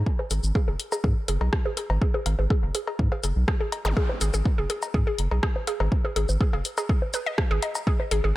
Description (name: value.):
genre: minimal techno.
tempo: 123 BPM.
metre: 4/4.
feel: straight.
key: G# minor.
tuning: A4 = 440 Hz.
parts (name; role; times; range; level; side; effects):
round analog bass; bass; 0.0-8.3 s; F#1 to G#2; -24 LUFS; equal; sidechain pumping.
electronic kick drum; drums; 0.1-8.0 s; none; -24 LUFS; equal; overdrive.
hollow square pluck; riff; 0.2-8.3 s; G#4 to D#5; -31 LUFS; equal; chorus, sidechain pumping, dub echo.
bongos and cowbell; percussion; 0.2-8.1 s; none; -35 LUFS; left 2 dB; dub echo.
house drum kit; drums; 0.3-8.2 s; hi-hat, rim click, shaker; -31 LUFS; left 1 dB; overdrive.
zap; sound effects; 3.8-4.0 s; none; -36 LUFS; equal; none.
room: little or no reverb.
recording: echo-heavy mix.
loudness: -23 LUFS.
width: side -17 dB against mid.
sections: 0.0-7.9 A section.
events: filter sweep on synth arpeggio sound 0.0-7.9.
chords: none.